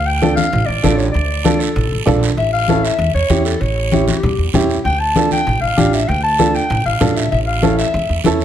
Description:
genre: latin, cumbia.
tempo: 194 BPM.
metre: 4/4.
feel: straight.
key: D harmonic minor.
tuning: A4 = 440 Hz.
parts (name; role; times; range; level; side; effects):
growling clarinet; second line; 0.0-8.4 s; G4 to A5; -19 LUFS; left 2 dB; none.
upright bass; bass; 0.0-8.4 s; A1 to E2; -19 LUFS; equal; none.
warm upright piano; accompaniment; 0.2-8.4 s; C#4 to A4; -18 LUFS; right 4 dB; none.
congas; percussion; 0.2-8.4 s; none; -20 LUFS; left 5 dB; none.
guiro; percussion; 0.2-8.4 s; none; -27 LUFS; right 9 dB; none.
room: moderate large studio reverb, RT60 1.2 s.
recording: none.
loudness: -13 LUFS.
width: side -10 dB against mid.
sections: 0.0-8.4 A section.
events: clarinet solo 0.0-8.4.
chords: 0.0 Dm; 2.4 A7; 4.8 Dm; 7.3 A.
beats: 0.22 0.53 0.84 | 1.15 1.46 1.76 2.07 | 2.38 2.69 3.00 3.31 | 3.62 3.92 4.23 4.54 | 4.85 5.16 5.47 5.78 | 6.08 6.39 6.70 7.01 | 7.32 7.63 7.94 8.25.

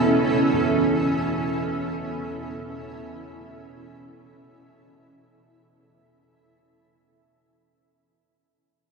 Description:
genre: ambient.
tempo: free time.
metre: none.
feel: none.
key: unclear.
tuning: A4 = 440 Hz.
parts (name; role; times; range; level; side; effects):
granular cloud pad; sustained chords; 0.0-5.7 s; C#4 to E5; -23 LUFS; right 1 dB; built-in reverb.
bowed-like drone; drone; 0.0-5.8 s; E2 to B2; -28 LUFS; right 3 dB; built-in reverb.
bronze singing bowl; texture; 0.0-5.7 s; none; barely audible; none; none.
gamelan-type bossed gongs; arpeggios; 0.5-7.7 s; F#2; -44 LUFS; right 1 dB; none.
room: wet cathedral reverb, RT60 5.8 s.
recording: in a vast, echoing space.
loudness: -21 LUFS.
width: side -4 dB against mid.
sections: 0.0-5.7 A section.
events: fade-out 0.0-5.7.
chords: 0.0 A.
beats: free time.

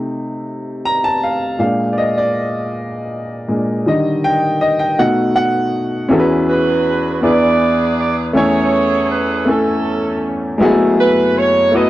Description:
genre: gospel.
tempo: 53 BPM (dotted quarters).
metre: 6/8.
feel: straight.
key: E major from 6.1 s.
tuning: A4 = 440 Hz.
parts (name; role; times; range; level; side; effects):
warm upright piano; accompaniment; 0.0-11.9 s; F#1 to Bb5; -14 LUFS; left 1 dB; none.
mellow saxophone section; melody; 6.5-11.9 s; C#4 to D#5; -16 LUFS; right 3 dB; slapback echo.
room: light reverb.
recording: dry, close 1970s-style studio recording.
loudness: -13 LUFS.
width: side -15 dB against mid.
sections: 0.0-6.1 A section; 6.1-11.9 B section.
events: upright piano solo 0.0-6.1.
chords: 0.0 Cm6; 1.6 Bb7; 3.9 Ebmaj7; 5.0 B7; 6.1 E69; 7.2 E7; 8.4 Amaj7/E; 10.6 F#m11.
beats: 0.47 | 1.60 2.72 | 3.85 4.98 | 6.10 7.23 | 8.36 9.48 | 10.61 11.74.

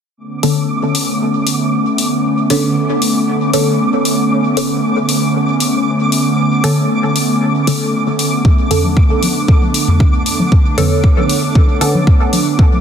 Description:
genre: dub techno.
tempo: 116 BPM.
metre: 4/4.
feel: swing 53% on 16ths.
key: B minor.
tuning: A4 = 440 Hz.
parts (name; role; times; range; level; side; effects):
airy breathy pad; sustained chords; 0.3-12.8 s; D3 to D4; -16 LUFS; right 1 dB; chorus, sidechain pumping.
flickering grainy texture; texture; 0.4-12.8 s; D6; -23 LUFS; right 1 dB; built-in reverb, sidechain pumping.
filtered dub chord stab; stabs; 0.4-12.1 s; D3 to A4; -18 LUFS; equal; phaser, sidechain pumping, dub echo.
electronic hi-hat; drums; 0.4-12.4 s; none; -21 LUFS; left 3 dB; small room reverb.
electronic kick drum; drums; 8.4-12.7 s; none; -10 LUFS; equal; small room reverb.
electronic congas and toms; percussion; 8.4-12.8 s; none; -18 LUFS; left 1 dB; overdrive, sidechain pumping on perc, small room reverb, sidechain pumping on toms, dub echo.
room: moderate huge ambient reverb, RT60 6.8 s.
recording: dense, heavily limited modern master.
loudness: -11 LUFS.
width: side -8 dB against mid.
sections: 0.2-12.8 A section.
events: filter sweep on synth stab 0.2-12.8.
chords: 0.2 Bm9.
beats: | 0.17 0.69 1.21 1.73 | 2.24 2.76 3.28 3.79 | 4.31 4.83 5.35 5.86 | 6.38 6.90 7.42 7.93 | 8.45 8.97 9.48 10.00 | 10.52 11.04 11.55 12.07 | 12.59.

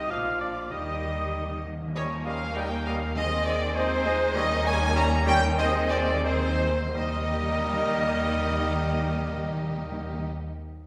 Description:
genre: quick classical-period movement for symphony orchestra.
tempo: 83-101 BPM.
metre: 2/4.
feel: straight.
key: Eb major.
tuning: A4 = 440 Hz.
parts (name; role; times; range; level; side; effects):
warm studio violin section; melody; 0.0-10.3 s; C5 to Bb5; -36 LUFS; equal; none.
rich studio violin section; second line; 0.0-10.3 s; C4 to F5; -39 LUFS; equal; none.
silver concert flute; second line; 0.0-10.3 s; C5 to Eb6; -36 LUFS; equal; none.
warm cor anglais; second line; 0.0-10.3 s; Bb4 to F5; -38 LUFS; equal; none.
warm bassoon; accompaniment; 0.0-10.3 s; Eb3 to Ab3; -38 LUFS; equal; none.
warm studio viola section; accompaniment; 0.0-10.3 s; Eb3 to G4; -37 LUFS; equal; none.
mellow French horn section; sustained chords; 0.0-10.3 s; G3 to F4; -40 LUFS; equal; none.
rich studio cello section; bass; 0.0-10.3 s; Eb2 to Eb3; -39 LUFS; equal; none.
warm studio double bass section; bass; 0.0-10.3 s; Bb1 to Eb2; -34 LUFS; equal; none.
timpani; percussion; 0.7-10.3 s; Eb3; -38 LUFS; equal; none.
clear trumpet section; stabs; 2.0-10.3 s; C5 to Bb5; -33 LUFS; equal; none.
room: wet scoring stage reverb, RT60 1.6 s.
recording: recorded in a church or concert hall.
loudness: -27 LUFS.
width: mono.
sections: 0.0-2.0 A section; 2.0-6.9 B section; 6.9-9.8 C section.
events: timpani fill 0.7-2.0, 5.6-6.9; slowing down 3.8-6.9.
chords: 0.1 Bb; 0.7 Eb; 2.0 Eb7; 3.2 Ab/Eb; 4.4 Eb7; 5.6 Ab/Eb; 6.9 Eb.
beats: 0.10 | 0.71 1.34 | 1.95 2.56 | 3.16 3.76 | 4.36 4.96 | 5.58 6.24 | 6.95 7.66 | 8.38 9.10.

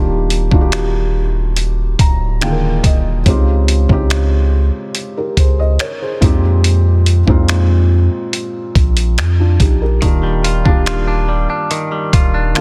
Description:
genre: contemporary R&B.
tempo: 71 BPM.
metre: 4/4.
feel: straight.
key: Eb major.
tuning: A4 = 440 Hz.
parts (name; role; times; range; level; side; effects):
felt-muted upright piano; accompaniment; 0.0-12.6 s; Bb2 to Bb5; -22 LUFS; equal; none.
long sustained 808-style bass; bass; 0.0-12.5 s; D1 to F2; -16 LUFS; equal; none.
dusty soul sampler-style drum kit; drums; 0.3-12.6 s; finger snaps, hi-hat, kick drum; -17 LUFS; equal; soft clipping on snare.
direct-recorded clean electric guitar; arpeggios; 10.0-12.6 s; Eb3 to F4; -21 LUFS; equal; tape echo.
room: little or no reverb.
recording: dense, heavily limited modern master.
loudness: -14 LUFS.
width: mono.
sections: 0.0-12.6 A section.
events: felt piano fill 1.6-3.3.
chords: 0.0 Ebmaj9; 3.3 Dbmaj9#11; 6.2 Bb13sus4; 10.0 Ebmaj9.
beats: 0.73 1.57 2.42 | 3.26 4.11 4.95 5.80 | 6.64 7.49 8.33 9.18 | 10.02 10.87 11.71 12.56.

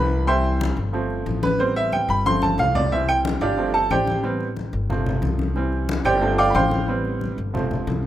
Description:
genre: latin, salsa.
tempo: 182 BPM.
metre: 4/4.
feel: straight.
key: unclear.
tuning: A4 = 441 Hz.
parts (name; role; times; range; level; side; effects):
bright upright piano; accompaniment; 0.0-8.0 s; E3 to D6; -21 LUFS; right 2 dB; none.
upright bass; bass; 0.0-8.1 s; G1 to C2; -25 LUFS; left 1 dB; none.
congas; percussion; 0.3-8.0 s; none; -27 LUFS; left 3 dB; none.
room: light reverb, small room ambience.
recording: rough home demo mix.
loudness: -19 LUFS.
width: side -12 dB against mid.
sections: 0.0-8.1 A section.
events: upright piano solo 0.0-8.1; drum fill 2.3-2.9.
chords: 0.3 C; 0.9 G7sus4; 1.6 Am7; 2.3 G7sus4; 2.9 C; 3.6 G7sus4; 4.2 Am7; 4.9 G7sus4; 5.6 C; 6.2 G7sus4; 6.9 Am7; 7.5 G7sus4.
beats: | 0.28 0.60 0.94 1.27 | 1.60 1.93 2.26 2.59 | 2.92 3.25 3.58 3.91 | 4.24 4.57 4.90 5.23 | 5.56 5.89 6.22 6.55 | 6.88 7.21 7.54 7.88.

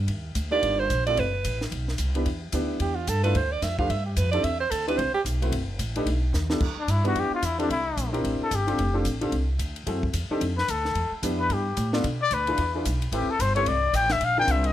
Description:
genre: jazz, small-group swing and bop.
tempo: 221 BPM.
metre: 4/4.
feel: swing 60% on 8ths.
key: unclear.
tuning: A4 = 445 Hz.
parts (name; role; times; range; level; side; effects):
upright bass; bass; 0.0-14.7 s; F1 to B2; -27 LUFS; equal; none.
compact cocktail drum kit; drums; 0.1-14.7 s; crash cymbal, hi-hat, kick drum, ride cymbal, snare drum; -33 LUFS; equal; none.
bright alto saxophone; second line; 0.5-5.2 s; F4 to F5; -26 LUFS; right 5 dB; none.
warm baby grand piano; accompaniment; 0.5-14.7 s; A3 to D5; -29 LUFS; left 1 dB; none.
breathy trumpet; melody; 6.8-14.7 s; D4 to G5; -25 LUFS; left 4 dB; plate reverb.
room: moderate studio reverb, RT60 0.8 s.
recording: none.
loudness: -23 LUFS.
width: side -12 dB against mid.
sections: 0.0-6.6 A section; 6.6-14.7 A section.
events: alto saxophone solo 0.0-6.6; drum fill 6.3; trumpet solo 6.6-14.7.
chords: 0.1 Ebmaj9; 1.2 F#madd11; 1.7 Cmaj9/B; 2.3 Em7; 3.4 Dm; 3.9 Gsus2; 4.4 Cmaj9; 5.5 F#madd11; 6.1 B7alt; 6.6 Em7; 7.7 C7; 8.8 F6; 9.9 F#m7b5; 10.4 F6; 11.0 Em7; 12.0 Bdim; 12.6 E7b9; 13.1 Am9; 14.2 Bb9.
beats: | 0.09 0.36 0.63 0.91 | 1.18 1.45 1.72 1.99 | 2.27 2.54 2.81 3.08 | 3.35 3.63 3.90 4.17 | 4.44 4.71 4.99 5.26 | 5.53 5.80 6.07 6.34 | 6.61 6.89 7.16 7.43 | 7.70 7.97 8.24 8.52 | 8.79 9.06 9.33 9.60 | 9.87 10.14 10.41 10.69 | 10.96 11.23 11.50 11.77 | 12.04 12.31 12.58 12.85 | 13.12 13.40 13.67 13.94 | 14.21 14.48.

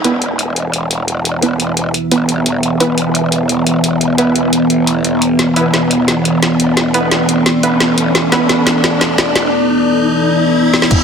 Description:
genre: dark technical drum and bass.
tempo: 174 BPM.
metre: 4/4.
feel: straight.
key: E minor.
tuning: A4 = 440 Hz.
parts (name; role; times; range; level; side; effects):
deep dark ambient pad; sustained chords; 0.0-11.0 s; E3 to E5; -14 LUFS; equal; chorus, built-in reverb, sidechain pumping.
band-passed chord stab; stabs; 0.0-8.4 s; B3 to B4; -19 LUFS; right 2 dB; chorus, dub echo.
growl bass; bass; 0.0-11.0 s; E1 to G1; -20 LUFS; equal; chorus, overdrive, sidechain pumping, high-pass filter.
drum and bass drum kit; drums; 0.0-11.0 s; crash cymbal, hi-hat, snare drum; -16 LUFS; equal; none.
riser; sound effects; 0.0-10.9 s; none; -22 LUFS; equal; none.
electronic kick drum; drums; 10.9-11.0 s; none; -11 LUFS; equal; none.
room: wet lush hall reverb, RT60 2.2 s.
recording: dense, heavily limited modern master.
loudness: -11 LUFS.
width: side -6 dB against mid.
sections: 0.0-10.9 A section.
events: build-up 0.0-10.9; riser 0.0-10.9; filter sweep on synth stab 0.0-10.9; drum fill 5.4-9.5, 10.7.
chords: 0.0 E5.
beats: 0.22 0.56 0.91 | 1.25 1.60 1.94 2.29 | 2.63 2.98 3.32 3.67 | 4.01 4.36 4.70 5.05 | 5.39 5.74 6.08 6.42 | 6.77 7.12 7.46 7.80 | 8.15 8.49 8.84 9.18 | 9.53 9.87 10.22 10.56 | 10.91.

